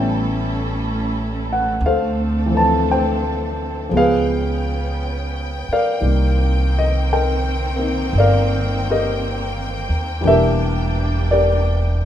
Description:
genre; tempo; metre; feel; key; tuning
jazz ballad; 57 BPM; 4/4; swing 68% on 8ths; unclear; A4 = 441 Hz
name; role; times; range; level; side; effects
warm concert grand piano; accompaniment; 0.0-12.1 s; Eb3 to A5; -19 LUFS; left 1 dB; none
rich symphonic string section; sustained chords; 0.0-12.1 s; Eb3 to G5; -25 LUFS; right 3 dB; none
upright bass; bass; 0.0-12.1 s; E1 to Eb2; -20 LUFS; equal; none
room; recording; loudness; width
light reverb; minimal, uncompressed stereo recording; -16 LUFS; side -10 dB against mid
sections
0.0-12.1 A section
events
none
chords
0.0 A7; 1.8 Dm7; 3.9 Db7#11; 6.0 Cm9; 10.2 Em7b5

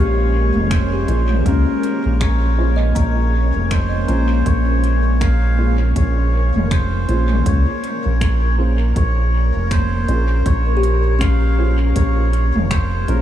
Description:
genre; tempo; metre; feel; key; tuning
ambient dub; 80 BPM; 4/4; swing 59% on 16ths; Bb dorian; A4 = 440 Hz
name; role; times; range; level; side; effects
melodica; melody; 0.0-13.2 s; Bb4 to F5; -26 LUFS; equal; vintage 12-bit sampler grit, dub echo
soft additive organ-like pad; sustained chords; 0.0-13.2 s; Bb2 to Bb4; -24 LUFS; equal; ensemble chorus, built-in reverb, vintage 12-bit sampler grit
kalimba; arpeggios; 0.0-13.2 s; Db4 to Bb5; -26 LUFS; left 5 dB; tape echo
round analog bass; bass; 0.0-13.2 s; F1 to Db2; -16 LUFS; equal; none
organic electronic drum kit; drums; 0.6-13.2 s; finger snaps, hi-hat, toms; -28 LUFS; right 1 dB; dub echo
electronic kick drum; drums; 0.7-12.9 s; none; -20 LUFS; equal; none
warm upright piano; stabs; 1.1-13.2 s; Db4 to C5; -30 LUFS; right 2 dB; none
room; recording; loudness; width
light reverb; none; -14 LUFS; side -11 dB against mid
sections
0.0-13.2 A section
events
none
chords
0.0 Bbm7

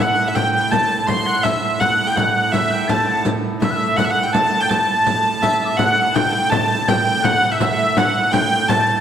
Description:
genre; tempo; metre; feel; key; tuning
medieval dance; 166 BPM; 3/4; straight; A dorian; A4 = 440 Hz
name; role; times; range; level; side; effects
clear hurdy-gurdy; melody; 0.0-9.0 s; E5 to C6; -18 LUFS; equal; none
accordion; second line; 0.0-9.0 s; E5 to C6; -24 LUFS; right 4 dB; none
mellow hollow soprano recorder; second line; 0.0-9.0 s; D6 to C7; -24 LUFS; left 2 dB; none
dark hurdy-gurdy; drone; 0.0-9.0 s; A2; -26 LUFS; right 4 dB; none
frame drum; percussion; 0.0-9.0 s; none; -23 LUFS; left 3 dB; none
riq; percussion; 0.0-9.0 s; none; -26 LUFS; right 4 dB; none
room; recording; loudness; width
wet concert hall reverb, RT60 1.8 s; none; -15 LUFS; side -9 dB against mid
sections
0.0-5.8 A section; 5.8-9.0 B section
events
none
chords
none

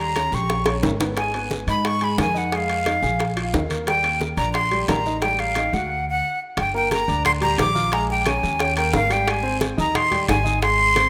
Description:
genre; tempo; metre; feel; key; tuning
Afro-Cuban jazz; 178 BPM; 4/4; straight; Eb major; A4 = 440 Hz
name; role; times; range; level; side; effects
breathy bright jazz flute; melody; 0.0-11.1 s; F5 to D6; -24 LUFS; equal; slapback echo
warm concert grand piano; accompaniment; 0.0-11.1 s; G3 to F6; -31 LUFS; equal; none
upright bass; bass; 0.0-11.1 s; G1 to Ab2; -28 LUFS; equal; none
bongos; percussion; 0.2-11.1 s; none; -29 LUFS; equal; none
congas; percussion; 0.2-11.1 s; none; -37 LUFS; equal; none
guiro; percussion; 0.2-11.1 s; none; -40 LUFS; equal; none
timbales; percussion; 0.2-11.1 s; none; -34 LUFS; equal; none
room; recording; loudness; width
moderate lush hall reverb, RT60 2.5 s; rough home demo mix; -21 LUFS; mono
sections
0.0-6.6 A section; 6.6-11.1 B section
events
drum fill 0.5-1.2; stop 5.9-6.6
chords
0.0 Eb7; 1.2 Abm; 2.5 Bb5; 3.9 Ebmaj7; 5.2 F13/A; 5.9 D; 6.6 Gm7; 7.9 Bbm7; 8.6 Eb7; 9.3 Abmaj7

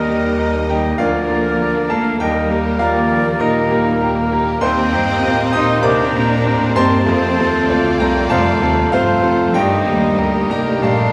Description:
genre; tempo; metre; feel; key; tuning
classical; 98 BPM; 4/4; rubato; unclear; A4 = 439 Hz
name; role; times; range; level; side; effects
clear baby grand piano; melody; 0.0-11.1 s; C2 to Eb6; -20 LUFS; equal; none
rich studio violin section; melody; 0.0-11.1 s; Bb4 to Eb5; -31 LUFS; equal; none
bright silver concert flute; second line; 0.0-11.1 s; Bb4 to C6; -26 LUFS; equal; none
warm oboe; second line; 0.0-11.1 s; Bb4 to Eb5; -29 LUFS; equal; none
warm studio violin section; second line; 0.0-11.1 s; G3 to Bb4; -31 LUFS; equal; none
rich studio viola section; accompaniment; 0.0-11.1 s; A3 to D4; -27 LUFS; equal; none
warm bassoon; accompaniment; 0.0-11.1 s; G3 to Bb3; -28 LUFS; equal; none
clear trombone section; sustained chords; 0.0-11.0 s; C3 to Bb3; -30 LUFS; equal; none
dark French horn section; sustained chords; 0.0-11.0 s; Bb3 to Bb4; -29 LUFS; equal; none
rich studio cello section; bass; 0.0-11.1 s; Eb3 to Eb4; -27 LUFS; equal; none
rich studio double bass section; bass; 0.0-11.1 s; Bb1 to C3; -25 LUFS; equal; none
room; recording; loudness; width
wet scoring stage reverb, RT60 1.6 s; none; -16 LUFS; mono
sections
0.0-11.1 A section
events
none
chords
0.0 Eb; 1.0 Bb/D; 2.2 Eb; 4.6 Cm7/Eb; 7.1 F; 9.5 Eb

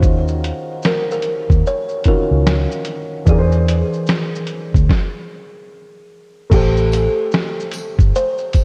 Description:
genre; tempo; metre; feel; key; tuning
lo-fi hip hop; 74 BPM; 4/4; swing 64% on 16ths; unclear; A4 = 441 Hz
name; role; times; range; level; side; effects
kalimba; melody; 0.0-8.6 s; G4 to C#5; -25 LUFS; equal; low-pass filter, diffuse ambient delay
dark upright piano; accompaniment; 0.0-8.6 s; D#3 to C5; -25 LUFS; equal; cassette tape, low-pass filter
vintage muted fingered electric bass; bass; 0.0-8.1 s; G1 to E2; -18 LUFS; equal; none
lo-fi sampler-style drum kit; drums; 0.0-8.6 s; crash cymbal, finger snaps, hi-hat, kick drum, shaker, snare drum; -19 LUFS; equal; none
tambourine; percussion; 6.9-8.6 s; none; -41 LUFS; equal; none
room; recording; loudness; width
light reverb; cassette tape; -17 LUFS; mono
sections
0.0-6.5 A section; 6.5-8.6 B section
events
stop 4.9-6.5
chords
0.0 D#m9; 3.3 E7b13; 6.5 Am7

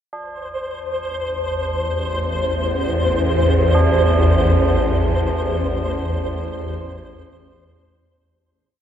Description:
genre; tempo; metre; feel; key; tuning
dark ambient drone; free time; none; none; A minor; A4 = 440 Hz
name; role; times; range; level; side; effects
tubular bells; arpeggios; 0.1-8.8 s; D4; -29 LUFS; right 1 dB; ping-pong delay, shimmer reverb
swarming drone; drone; 1.4-8.5 s; A1 to E2; -18 LUFS; equal; built-in reverb
flickering grainy texture; texture; 0.4-8.4 s; C5; -23 LUFS; left 1 dB; built-in reverb, shimmer reverb
room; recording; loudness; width
wet huge ambient reverb, RT60 7.0 s; none; -17 LUFS; side -9 dB against mid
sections
0.1-8.4 A section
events
fade-in on tubular bells 0.1-8.4; fade-out 4.3-8.4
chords
0.1 Am

